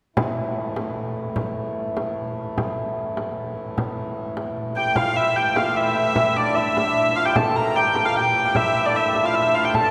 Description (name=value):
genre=medieval dance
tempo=150 BPM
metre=3/4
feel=straight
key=unclear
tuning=A4 = 440 Hz
part: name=hand-pumped harmonium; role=drone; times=0.2-9.9 s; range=A2 to E3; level=-31 LUFS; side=equal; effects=none
part: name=frame drum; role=percussion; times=0.2-9.9 s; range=none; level=-30 LUFS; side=equal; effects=none
part: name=rich hurdy-gurdy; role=melody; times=4.8-9.9 s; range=D5 to Bb5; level=-22 LUFS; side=equal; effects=none
part: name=hammered dulcimer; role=second line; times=4.8-9.9 s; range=D4 to Bb4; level=-26 LUFS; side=equal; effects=none
room=wet cathedral reverb, RT60 6.0 s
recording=recorded in a church or concert hall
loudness=-22 LUFS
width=mono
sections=0.2-5.0 A section; 5.0-9.9 B section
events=none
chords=none